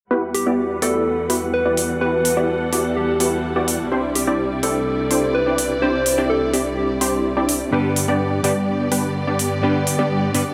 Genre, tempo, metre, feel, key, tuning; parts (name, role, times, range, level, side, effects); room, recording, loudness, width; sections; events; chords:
EDM, festival progressive house; 126 BPM; 4/4; straight; E minor; A4 = 440 Hz
rich studio string section; sustained chords; 0.1-10.5 s; C2 to F#5; -29 LUFS; equal; vintage 12-bit sampler grit, low-pass filter
supersaw stab; riff; 0.1-10.5 s; G3 to D5; -23 LUFS; equal; low-pass filter, dub echo
soft struck synth lead; melody; 0.3-7.5 s; G4 to C5; -25 LUFS; equal; chorus, dub echo
electronic hi-hat; drums; 0.3-10.4 s; -26 LUFS; equal; studio reverb
mellow electric guitar; accompaniment; 7.7-10.4 s; G2 to B4; -26 LUFS; equal; dub echo
light reverb; -20 LUFS; mono
0.1-10.5 A section
0.1 Emadd9; 3.9 Cadd9; 7.7 G